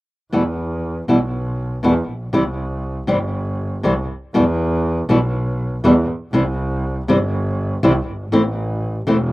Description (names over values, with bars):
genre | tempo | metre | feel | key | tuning
tango | 120 BPM | 4/4 | rubato | E minor | A4 = 440 Hz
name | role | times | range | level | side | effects
flamenco guitar | accompaniment | 0.3-9.2 s | B2 to E4 | -16 LUFS | equal | none
clear double bass | bass | 0.3-9.3 s | E1 to E2 | -21 LUFS | right 1 dB | none
room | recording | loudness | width
little or no reverb | recorded outdoors, with no room sound | -17 LUFS | side -18 dB against mid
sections
0.3-4.3 A section; 4.3-9.3 B section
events
none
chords
0.3 Em; 2.3 C; 4.3 Em; 6.3 C; 8.3 Am